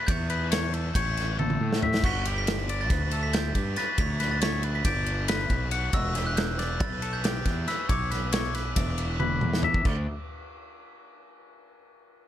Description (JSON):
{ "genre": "math rock and midwest emo", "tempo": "276 BPM (eighths)", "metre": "9/8", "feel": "straight", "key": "unclear", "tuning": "A4 = 439 Hz", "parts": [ { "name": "glockenspiel with brass mallets", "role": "melody", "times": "0.0-9.4 s", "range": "D6 to B6", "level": "-34 LUFS", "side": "right 5 dB", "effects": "tape echo" }, { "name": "twangy electric guitar", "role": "arpeggios", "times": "0.0-10.1 s", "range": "F#4 to F#5", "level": "-32 LUFS", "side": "left 6 dB", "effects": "none" }, { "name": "fuzz fingered electric bass", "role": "bass", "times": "0.1-10.1 s", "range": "E1 to A2", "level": "-29 LUFS", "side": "equal", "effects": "overdrive" }, { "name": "loose indie drum kit", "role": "drums", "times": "0.1-10.0 s", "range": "crash cymbal, kick drum, ride cymbal, snare drum, toms", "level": "-28 LUFS", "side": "equal", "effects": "none" } ], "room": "little or no reverb", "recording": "dark, warm production", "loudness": "-24 LUFS", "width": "side -11 dB against mid", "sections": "0.0-9.9 A section; 9.9-11.8 B section", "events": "drum fill 1.4-2.0, 9.2-9.9", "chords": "0.0 A7; 2.0 G; 5.9 Em7; 9.9 N.C." }